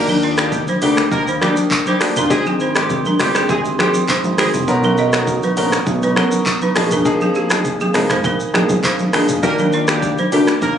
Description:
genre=afrobeats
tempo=101 BPM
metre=4/4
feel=straight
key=Eb major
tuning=A4 = 440 Hz
part: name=clear horn section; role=second line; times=0.0-4.5, 9.4-10.7 s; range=F3 to Bb4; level=-23 LUFS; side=right 1 dB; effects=none
part: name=clear grand piano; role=accompaniment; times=0.0-10.5 s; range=Eb3 to A#4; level=-19 LUFS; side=left 2 dB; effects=none
part: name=glass harmonica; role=sustained chords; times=0.0-10.8 s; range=Ab3 to Eb6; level=-27 LUFS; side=right 2 dB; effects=stereo widening
part: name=fat analog bass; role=bass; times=0.0-10.8 s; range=G1 to Eb2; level=-21 LUFS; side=left 1 dB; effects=none
part: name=balafon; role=riff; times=0.1-10.4 s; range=Bb3 to D#5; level=-20 LUFS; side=right 5 dB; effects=digital delay
part: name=deep house drum kit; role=drums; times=0.1-10.8 s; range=finger snaps, handclaps, hi-hat, kick drum, rim click, shaker, toms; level=-20 LUFS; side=equal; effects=none
part: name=congas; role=percussion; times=0.1-10.8 s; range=none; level=-24 LUFS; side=equal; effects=none
room=light reverb, studio reverb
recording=recorded on a phone in the room, club reverb, nothing above 10.8 kHz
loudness=-14 LUFS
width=side -8 dB against mid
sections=0.0-10.8 A section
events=none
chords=0.0 Ebmaj7; 2.3 Abmaj7; 4.7 Bmaj9; 6.8 Bb7sus4; 9.4 Ebmaj7

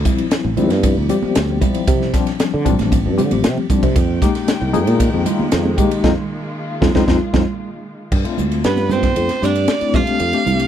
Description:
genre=electric jazz fusion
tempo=115 BPM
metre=4/4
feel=straight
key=unclear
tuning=A4 = 436 Hz
part: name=mellow tine electric piano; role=accompaniment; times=0.0-10.7 s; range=F3 to Ab4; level=-20 LUFS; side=left 8 dB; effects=medium tremolo, phaser
part: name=sustaining fretless electric bass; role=bass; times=0.0-10.7 s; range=A1 to D3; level=-19 LUFS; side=right 1 dB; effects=wide subtle chorus
part: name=congas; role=percussion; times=0.0-10.6 s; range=none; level=-23 LUFS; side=right 8 dB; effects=none
part: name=crisp fusion drum kit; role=drums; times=0.1-10.7 s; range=crash cymbal, hi-hat, kick drum, ride cymbal, snare drum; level=-20 LUFS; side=equal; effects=none
part: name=muted studio string section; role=sustained chords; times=4.0-8.1 s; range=Eb3 to G5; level=-26 LUFS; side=equal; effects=none
part: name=rich violin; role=melody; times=8.6-10.7 s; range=B4 to F5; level=-20 LUFS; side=right 3 dB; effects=none
part: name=hollow-body jazz guitar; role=second line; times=8.7-10.7 s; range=B3 to F4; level=-25 LUFS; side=right 8 dB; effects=none
room=light reverb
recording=none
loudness=-14 LUFS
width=side -10 dB against mid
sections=0.0-8.1 A section; 8.1-10.7 B section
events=band accent 6.0-8.1; tine electric piano fill 6.6-8.1; drum fill 7.1-8.1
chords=0.0 Dm11; 4.0 Fm11; 8.1 G9sus4; 9.9 F6

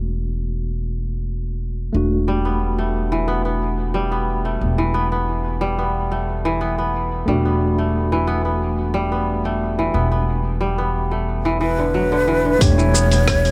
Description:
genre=organic downtempo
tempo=90 BPM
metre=4/4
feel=straight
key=E minor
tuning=A4 = 440 Hz
part: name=tine electric piano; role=accompaniment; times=0.0-13.5 s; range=A3 to G4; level=-29 LUFS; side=equal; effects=overdrive, sidechain pumping, tape echo
part: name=upright bass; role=bass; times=0.0-13.5 s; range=E1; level=-24 LUFS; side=equal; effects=sidechain pumping
part: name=kora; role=arpeggios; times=2.3-13.5 s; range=D3 to B3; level=-24 LUFS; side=equal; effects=tape echo
part: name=breathy ney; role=melody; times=11.6-13.5 s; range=B4 to C#5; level=-22 LUFS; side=equal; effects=none
part: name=dusty soul sampler-style drum kit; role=drums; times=12.6-13.5 s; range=hi-hat, rim click, shaker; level=-25 LUFS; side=equal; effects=low-pass filter on hats, low-pass filter on perc, low-pass filter on snare
part: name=electronic kick drum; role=drums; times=12.6-13.4 s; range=none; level=-20 LUFS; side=equal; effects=none
room=light reverb, small room reverb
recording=none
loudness=-20 LUFS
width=mono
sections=0.0-12.6 A section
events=none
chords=0.0 Em7

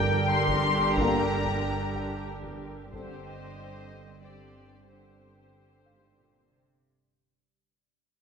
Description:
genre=cinematic, suspense film score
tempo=92 BPM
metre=3/4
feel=straight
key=unclear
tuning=A4 = 440 Hz
part: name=warm studio violin section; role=melody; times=0.0-6.2 s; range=C5 to C6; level=-29 LUFS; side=left 4 dB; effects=none
part: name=dark studio violin section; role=second line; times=0.0-6.6 s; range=G4 to C5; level=-33 LUFS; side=left 2 dB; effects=none
part: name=dark studio viola section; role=accompaniment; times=0.0-6.6 s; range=D3 to D4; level=-36 LUFS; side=right 2 dB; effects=none
part: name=dark studio double bass section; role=bass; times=0.0-6.6 s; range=G1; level=-35 LUFS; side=right 4 dB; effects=none
part: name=warm studio cello section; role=bass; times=0.0-6.8 s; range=G2 to C3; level=-36 LUFS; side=right 4 dB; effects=none
part: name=organ-like drone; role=drone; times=0.0-6.8 s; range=G1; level=-38 LUFS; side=right 2 dB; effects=ensemble chorus, built-in reverb
part: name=warm concert grand piano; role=texture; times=0.0-6.9 s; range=Bb4 to Bb5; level=-45 LUFS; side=left 1 dB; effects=none
part: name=taiko ensemble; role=drums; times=0.5-4.2 s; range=none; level=-38 LUFS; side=equal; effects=none
part: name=mellow French horn section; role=sustained chords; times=1.0-5.1 s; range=D3 to C4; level=-34 LUFS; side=left 4 dB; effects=none
part: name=timpani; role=percussion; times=2.9-3.9 s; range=G2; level=-54 LUFS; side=equal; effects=none
room=wet scoring stage reverb, RT60 1.9 s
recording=minimal, uncompressed stereo recording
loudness=-24 LUFS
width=side -6 dB against mid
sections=0.0-6.8 A section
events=fade-out 0.0-6.8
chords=0.0 Gm; 2.9 Cmadd9/G

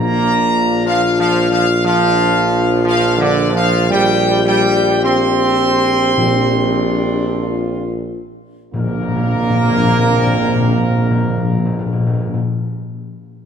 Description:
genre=classical, ceremonial fanfare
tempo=43-64 BPM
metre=4/4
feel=straight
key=Bb major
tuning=A4 = 440 Hz
part: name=clear trumpet section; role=melody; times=0.0-12.4 s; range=Bb4 to C6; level=-19 LUFS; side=left 1 dB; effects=none
part: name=mellow French horn section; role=sustained chords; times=0.0-12.4 s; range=C4 to G4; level=-20 LUFS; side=left 5 dB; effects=none
part: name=warm trombone section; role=sustained chords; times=0.0-12.4 s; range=D3 to C4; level=-18 LUFS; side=right 4 dB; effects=none
part: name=mellow tuba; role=bass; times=0.0-12.4 s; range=Bb1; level=-20 LUFS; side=right 3 dB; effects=none
part: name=timpani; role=percussion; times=0.0-12.4 s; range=Bb2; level=-19 LUFS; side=left 2 dB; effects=none
room=moderate concert hall reverb, RT60 2.4 s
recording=close, detailed microphones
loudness=-13 LUFS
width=side -7 dB against mid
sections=0.0-8.7 A section; 8.7-13.5 B section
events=slowing down 0.0-8.7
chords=0.0 Bb; 3.9 Fsus2/Bb; 6.2 Bbadd9

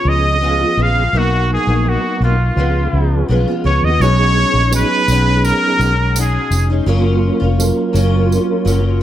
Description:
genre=indie pop, bedroom pop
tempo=84 BPM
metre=4/4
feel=straight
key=unclear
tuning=A4 = 440 Hz
part: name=trumpet with straight mute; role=melody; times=0.0-6.7 s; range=E#4 to E#5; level=-17 LUFS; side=equal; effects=analog chorus, digital delay
part: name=picked steel-string acoustic guitar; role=accompaniment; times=0.0-9.0 s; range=B2 to G#4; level=-21 LUFS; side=left 4 dB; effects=ensemble chorus, vibrato effect
part: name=percussive tonewheel organ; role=accompaniment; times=0.1-8.8 s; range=E#3 to A#4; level=-20 LUFS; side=right 4 dB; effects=chorus vibrato, fast rotary speaker
part: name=vintage muted fingered electric bass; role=bass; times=0.1-9.0 s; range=E#1 to D#2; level=-15 LUFS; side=equal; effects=none
part: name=tambourine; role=percussion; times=4.0-8.8 s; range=none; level=-26 LUFS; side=right 6 dB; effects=none
room=light reverb, studio ambience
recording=none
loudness=-12 LUFS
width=side -12 dB against mid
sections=0.0-4.0 A section; 4.0-9.0 B section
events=none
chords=0.0 C#7; 1.1 Bmaj7; 2.6 C#7; 4.0 B69; 6.9 F#maj7

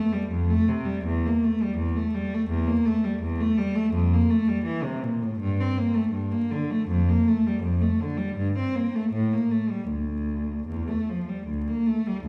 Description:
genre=classical, baroque-style suite movement for unaccompanied cello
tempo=82 BPM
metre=4/4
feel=uneven beats, rubato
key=D minor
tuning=A4 = 440 Hz
part: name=rich cello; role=solo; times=0.0-12.3 s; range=D2 to C4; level=-25 LUFS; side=equal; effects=none
room=wet recital hall reverb, RT60 1.4 s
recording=heard from further back in the room, vinyl crackle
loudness=-25 LUFS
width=mono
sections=0.0-12.3 A section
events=none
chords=none

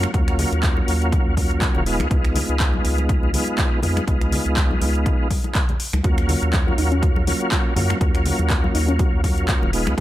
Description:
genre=deep house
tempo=122 BPM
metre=4/4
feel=swing 55% on 16ths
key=Eb minor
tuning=A4 = 442 Hz
part: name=tonewheel organ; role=stabs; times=0.0-10.0 s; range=Gb3 to F4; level=-24 LUFS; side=right 1 dB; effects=chorus vibrato, fast rotary speaker, sidechain pumping, tape echo
part: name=round analog bass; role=bass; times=0.0-10.0 s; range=Eb1 to Gb2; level=-22 LUFS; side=equal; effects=sidechain pumping
part: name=deep house drum kit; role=drums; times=0.0-10.0 s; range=finger snaps, handclaps, hi-hat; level=-27 LUFS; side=equal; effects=overdrive
part: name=congas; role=percussion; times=0.0-10.0 s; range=none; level=-30 LUFS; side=left 3 dB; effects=none
part: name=electronic kick drum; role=drums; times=0.1-10.0 s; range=none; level=-20 LUFS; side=equal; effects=none
part: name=soft round pluck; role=arpeggios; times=6.0-10.0 s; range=Db4 to Gb4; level=-29 LUFS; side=left 2 dB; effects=chorus, sidechain pumping, tape echo
room=little or no reverb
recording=none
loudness=-17 LUFS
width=side -14 dB against mid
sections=0.0-10.0 A section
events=none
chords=0.0 Ebm9; 1.9 Db9; 6.0 Ebm9

